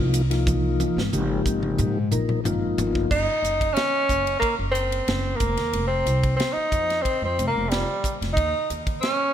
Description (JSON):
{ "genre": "electric jazz fusion", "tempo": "91 BPM", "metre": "4/4", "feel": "straight", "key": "Ab major", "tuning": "A4 = 440 Hz", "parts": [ { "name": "mellow tonewheel organ", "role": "accompaniment", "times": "0.0-3.1 s", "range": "F3 to Bb4", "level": "-26 LUFS", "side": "left 3 dB", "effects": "slow rotary speaker" }, { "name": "upright bass", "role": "bass", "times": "0.0-9.0 s", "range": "F1 to Ab2", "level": "-26 LUFS", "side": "equal", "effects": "none" }, { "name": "crisp fusion drum kit", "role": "drums", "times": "0.1-9.2 s", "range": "crash cymbal, hi-hat, kick drum, ride cymbal, snare drum, toms", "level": "-27 LUFS", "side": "equal", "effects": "none" }, { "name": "warm tenor saxophone", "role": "melody", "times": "3.1-9.3 s", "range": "G3 to Eb4", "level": "-23 LUFS", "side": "right 1 dB", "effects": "none" } ], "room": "light reverb, small room ambience", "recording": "bright 1980s-style digital production", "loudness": "-21 LUFS", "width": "side -10 dB against mid", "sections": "0.0-3.1 A section; 3.1-9.3 B section", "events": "drum fill 0.5-3.1", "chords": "0.0 Ab69; 3.1 Gb5; 5.4 F5; 8.4 Eb5" }